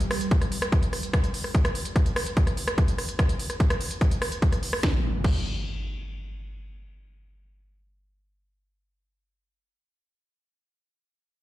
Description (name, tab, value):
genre	psychedelic trance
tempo	146 BPM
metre	4/4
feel	straight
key	unclear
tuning	A4 = 440 Hz
part	overtone-sweeping drone	sustained chords	0.0-1.6 s	G3	-36 LUFS	right 2 dB	chorus, built-in reverb, sidechain pumping
part	techno drum kit	drums	0.0-5.4 s	crash cymbal, hi-hat, rim click, snare drum	-30 LUFS	equal	none
part	electronic kick drum	drums	0.3-5.4 s	none	-23 LUFS	equal	none
part	impact	sound effects	4.8-9.4 s	none	-30 LUFS	equal	none
room	little or no reverb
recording	played on a big sound system in a bare room, large studio reverb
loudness	-23 LUFS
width	side -16 dB against mid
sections	0.0-4.8 A section; 4.8-8.1 B section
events	filter sweep on synth drone 0.0-1.5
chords	none